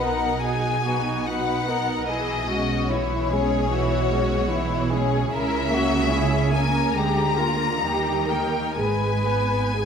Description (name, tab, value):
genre	classical, slow romantic movement for string orchestra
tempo	60-76 BPM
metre	4/4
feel	rubato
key	unclear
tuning	A4 = 441 Hz
part	rich studio violin section	melody	0.0-9.9 s	C#5 to A#5	-26 LUFS	left 6 dB	none
part	warm studio violin section	second line	0.0-9.9 s	E4 to B4	-27 LUFS	left 1 dB	none
part	rich studio viola section	accompaniment	0.0-9.9 s	E3 to B4	-27 LUFS	right 1 dB	none
part	rich studio cello section	bass	0.0-9.9 s	G#2 to D#3	-28 LUFS	right 3 dB	none
part	rich studio double bass section	bass	0.0-9.9 s	G#1 to D#2	-28 LUFS	right 3 dB	none
room	wet scoring stage reverb, RT60 1.6 s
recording	none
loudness	-20 LUFS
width	side -7 dB against mid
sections	0.0-9.9 A section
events	none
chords	0.0 B; 2.1 C#m/B; 5.3 A#dim/C#; 7.0 A#7/D; 7.8 D#; 8.8 G#m